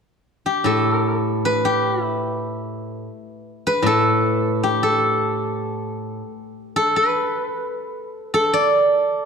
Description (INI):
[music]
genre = chinese traditional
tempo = 76 BPM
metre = 4/4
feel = rubato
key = unclear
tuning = A4 = 439 Hz
[part]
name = steel-string zither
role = solo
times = 0.5-9.3 s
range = A2 to D5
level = -18 LUFS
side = equal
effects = none
[sound]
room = moderate concert hall reverb, RT60 1.9 s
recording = dark, warm production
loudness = -18 LUFS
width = side -6 dB against mid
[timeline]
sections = 0.0-9.3 A section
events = none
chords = none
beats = 0.03 0.86 1.68 | 2.48 3.27 4.05 4.84 | 5.63 6.41 7.18 7.95 | 8.74